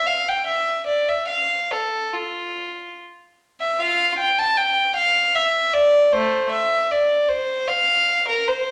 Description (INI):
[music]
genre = classical, baroque-style suite movement for unaccompanied violin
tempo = 72-78 BPM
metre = 3/4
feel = rubato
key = F major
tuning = A4 = 442 Hz
[part]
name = rich violin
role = solo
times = 0.0-8.7 s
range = A3 to A5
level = -20 LUFS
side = equal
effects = none
[sound]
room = wet stone room reverb, RT60 1.0 s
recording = none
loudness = -20 LUFS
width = mono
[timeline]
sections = 0.0-3.8 A section; 3.8-8.7 B section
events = none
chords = none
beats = 0.49 | 1.31 2.14 2.98 | 3.80 4.58 5.36 | 6.14 6.91 7.68 | 8.46